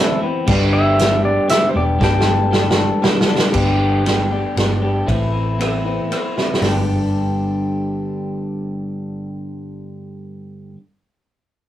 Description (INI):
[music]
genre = folk rock and heartland rock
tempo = 117 BPM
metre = 3/4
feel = straight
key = G major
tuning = A4 = 441 Hz
[part]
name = pedal steel guitar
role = melody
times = 0.0-3.3 s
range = A4 to G5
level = -19 LUFS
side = equal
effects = none
[part]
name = picked old ladder-braced acoustic guitar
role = accompaniment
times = 0.0-10.8 s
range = G2 to A4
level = -23 LUFS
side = left 3 dB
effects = none
[part]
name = twelve-string electric guitar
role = riff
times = 0.0-10.8 s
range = G2 to A4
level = -23 LUFS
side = right 1 dB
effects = none
[part]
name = hollow-body short-scale picked electric bass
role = bass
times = 0.5-10.7 s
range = E1 to A1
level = -21 LUFS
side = equal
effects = none
[part]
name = vintage drum kit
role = drums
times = 0.5-6.7 s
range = crash cymbal, hi-hat, kick drum, ride cymbal, rim click, snare drum, toms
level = -19 LUFS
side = right 1 dB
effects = none
[sound]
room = moderate studio ambience, RT60 0.5 s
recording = rough rehearsal-room recording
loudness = -15 LUFS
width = side -12 dB against mid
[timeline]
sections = 0.0-3.5 A section; 3.5-6.6 B section; 6.6-9.7 C section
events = drum fill 2.0-3.5, 6.4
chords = 0.5 G; 2.0 Gadd9; 3.5 G; 5.1 Amadd9; 6.6 G